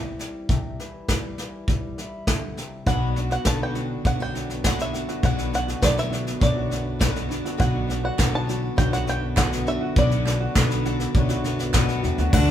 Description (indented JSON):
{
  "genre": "indie folk with a building arrangement",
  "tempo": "101 BPM",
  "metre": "4/4",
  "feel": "straight",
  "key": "unclear",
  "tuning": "A4 = 439 Hz",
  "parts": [
    { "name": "bluegrass banjo", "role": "melody", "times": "0.0-12.5 s", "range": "D5 to A5", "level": "-28 LUFS", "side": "right 1 dB", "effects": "none" },
    { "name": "fingerpicked old ladder-braced acoustic guitar", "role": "accompaniment", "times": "0.0-12.5 s", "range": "F#2 to F#4", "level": "-32 LUFS", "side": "left 3 dB", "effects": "none" },
    { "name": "soft brush drum kit", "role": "drums", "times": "0.2-12.5 s", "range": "crash cymbal, kick drum, snare drum", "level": "-23 LUFS", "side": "equal", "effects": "none" },
    { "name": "picked twelve-string acoustic guitar", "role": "accompaniment", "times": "2.9-12.5 s", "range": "B2 to F#4", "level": "-32 LUFS", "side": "left 6 dB", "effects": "none" },
    { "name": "clear upright piano", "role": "arpeggios", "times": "2.9-12.5 s", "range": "F#3 to F#4", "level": "-31 LUFS", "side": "right 4 dB", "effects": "none" },
    { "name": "upright bass", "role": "bass", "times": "2.9-12.5 s", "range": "B1 to E2", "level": "-27 LUFS", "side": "equal", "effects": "none" },
    { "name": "group handclap", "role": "percussion", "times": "8.2-11.9 s", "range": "none", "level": "-34 LUFS", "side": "right 5 dB", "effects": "none" },
    { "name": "warm cello", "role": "second line", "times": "12.3-12.5 s", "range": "D4", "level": "-23 LUFS", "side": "left 1 dB", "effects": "none" }
  ],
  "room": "moderate large studio reverb, RT60 1.3 s",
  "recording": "band playing live in one room",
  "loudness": "-21 LUFS",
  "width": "side -10 dB against mid",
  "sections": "0.0-2.9 A section; 2.9-12.3 B section",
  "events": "none",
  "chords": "0.0 C; 2.9 Bm"
}